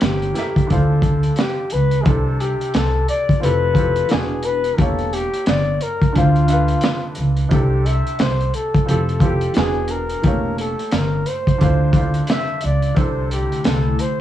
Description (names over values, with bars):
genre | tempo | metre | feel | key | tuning
lo-fi hip hop | 88 BPM | 4/4 | swing 62% on 16ths | C major | A4 = 439 Hz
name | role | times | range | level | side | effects
breathy flugelhorn | melody | 0.0-14.2 s | F4 to E5 | -22 LUFS | left 3 dB | low-pass filter
warm upright piano | accompaniment | 0.0-14.2 s | C3 to E5 | -25 LUFS | right 5 dB | low-pass filter
upright bass | bass | 0.0-13.9 s | E1 to D2 | -19 LUFS | equal | none
crunchy breakbeat drum kit | drums | 0.0-14.2 s | hi-hat, kick drum, snare drum | -20 LUFS | equal | vintage 12-bit sampler grit
warbly tape-like pad | sustained chords | 13.4-14.2 s | D3 to E4 | -24 LUFS | left 5 dB | chorus, built-in reverb, low-pass filter
room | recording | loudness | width
light reverb | none | -16 LUFS | side -12 dB against mid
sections
0.0-2.1 A section; 2.1-14.2 B section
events
none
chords
0.0 A7b9; 0.7 Dm7; 2.1 C69; 3.4 Fmaj9; 4.1 E9; 4.8 A7b9/E; 6.1 Dm7; 7.5 C69; 8.9 Fmaj9; 9.6 E9; 10.2 A7b9/E; 11.6 Dm7; 13.0 C69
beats
0.01 0.69 1.38 | 2.06 2.74 3.42 4.10 | 4.79 5.47 6.15 6.83 | 7.51 8.19 8.88 9.56 | 10.24 10.92 11.60 12.29 | 12.97 13.65